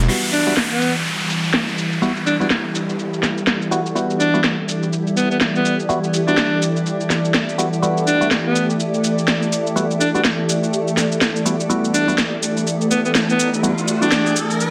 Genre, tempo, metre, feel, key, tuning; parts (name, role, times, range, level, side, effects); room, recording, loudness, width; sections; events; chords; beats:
bass house; 124 BPM; 4/4; swing 59% on 16ths; E minor; A4 = 441 Hz
sweeping resonant pad; sustained chords; 0.0-14.7 s; E3 to A3; -25 LUFS; equal; lush chorus
percussive organ stab; stabs; 0.1-14.1 s; G3 to F#4; -26 LUFS; equal; chorus, phaser, tape echo
garage drum kit; drums; 0.1-14.7 s; cabasa, crash cymbal, snare drum; -23 LUFS; equal; low-pass filter on hats, low-pass filter on perc, low-pass filter on cymbals, low-pass filter on snare, low-pass filter on room
downlifter and riser; sound effects; 0.1-4.0, 12.5-14.7 s; -28 LUFS; equal
granular cloud pad; texture; 1.3-14.7 s; E4 to D5; -28 LUFS; equal; built-in reverb
bright alto saxophone; melody; 0.3-14.4 s; B3 to D4; -23 LUFS; equal; vintage 12-bit sampler grit, tape echo
wet digital room reverb, RT60 0.9 s; dense, heavily limited modern master; -19 LUFS; mono
0.1-14.7 A section
filter sweep on synth stab 0.1-14.7; riser 12.5-14.7
0.1 Emadd9
| 0.08 0.57 1.05 1.53 | 2.02 2.50 2.99 3.47 | 3.95 4.44 4.92 5.41 | 5.89 6.37 6.86 7.34 | 7.83 8.31 8.79 9.28 | 9.76 10.24 10.73 11.21 | 11.70 12.18 12.66 13.15 | 13.63 14.12 14.60